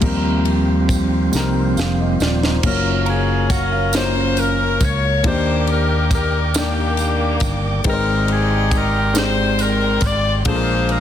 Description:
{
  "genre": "slow gospel",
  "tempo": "46 BPM (dotted quarters)",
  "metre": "6/8",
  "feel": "straight",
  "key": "Eb major",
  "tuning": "A4 = 440 Hz",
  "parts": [
    { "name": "warm grand piano", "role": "accompaniment", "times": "0.0-11.0 s", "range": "Ab2 to G5", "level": "-23 LUFS", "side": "left 4 dB", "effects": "none" },
    { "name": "tonewheel organ", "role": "sustained chords", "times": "0.0-11.0 s", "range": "F3 to D6", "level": "-24 LUFS", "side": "right 3 dB", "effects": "fast rotary speaker" },
    { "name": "fingered electric bass", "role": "bass", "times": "0.0-11.0 s", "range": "Eb1 to Eb2", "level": "-20 LUFS", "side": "equal", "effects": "none" },
    { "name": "tight funk drum kit", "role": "drums", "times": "0.0-11.0 s", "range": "crash cymbal, kick drum, ride cymbal, snare drum", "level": "-23 LUFS", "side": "equal", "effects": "none" },
    { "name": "tambourine", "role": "percussion", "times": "0.9-10.4 s", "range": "none", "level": "-31 LUFS", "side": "right 10 dB", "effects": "none" },
    { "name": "edgy saxophone section", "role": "melody", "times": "2.6-11.0 s", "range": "Bb3 to D5", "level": "-21 LUFS", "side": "left 3 dB", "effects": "slapback echo" },
    { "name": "semi-hollow electric guitar", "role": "second line", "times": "3.1-5.2 s", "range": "Db4 to Bb4", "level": "-27 LUFS", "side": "right 11 dB", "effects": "phaser" }
  ],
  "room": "light reverb, small room ambience",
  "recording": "dense, heavily limited modern master",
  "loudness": "-15 LUFS",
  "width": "side -10 dB against mid",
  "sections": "0.0-2.6 A section; 2.6-11.0 B section",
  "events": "tonewheel organ solo 0.0-2.6; drum fill 1.3-2.6",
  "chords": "0.0 Eb6; 2.6 Gbmaj7; 5.2 Ebmaj7; 7.8 Abmaj7; 10.5 Bb7",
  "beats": "| 0.02 1.33 | 2.63 3.94 | 5.24 6.55 | 7.85 9.15 | 10.46"
}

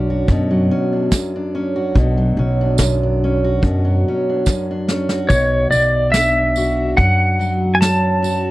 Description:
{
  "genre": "acoustic folk duo or small band",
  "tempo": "72 BPM",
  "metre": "4/4",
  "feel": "straight",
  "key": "B minor",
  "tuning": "A4 = 442 Hz",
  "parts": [
    { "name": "fingerpicked steel-string acoustic guitar", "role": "accompaniment", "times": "0.0-8.5 s", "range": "F#2 to F#4", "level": "-19 LUFS", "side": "equal", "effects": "none" },
    { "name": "upright bass", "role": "bass", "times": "0.0-8.5 s", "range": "B1 to F#2", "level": "-18 LUFS", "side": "equal", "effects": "none" },
    { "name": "soft brush drum kit", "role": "drums", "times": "0.3-8.0 s", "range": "kick drum, snare drum", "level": "-16 LUFS", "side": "equal", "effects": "none" },
    { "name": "tambourine", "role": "percussion", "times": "1.1-8.4 s", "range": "none", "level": "-30 LUFS", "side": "right 12 dB", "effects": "none" },
    { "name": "pedal steel guitar", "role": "melody", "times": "5.3-8.5 s", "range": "C#5 to A5", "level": "-16 LUFS", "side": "equal", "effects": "none" }
  ],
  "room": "little or no reverb",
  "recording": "dry, close 1970s-style studio recording, lossy compression artefacts",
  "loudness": "-14 LUFS",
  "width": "side -18 dB against mid",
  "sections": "0.0-5.3 A section; 5.3-8.5 B section",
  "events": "drum fill 4.5-5.3",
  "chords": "0.0 Bmadd9",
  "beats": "0.28 1.11 | 1.95 2.79 3.63 4.46 | 5.30 6.14 6.97 7.81"
}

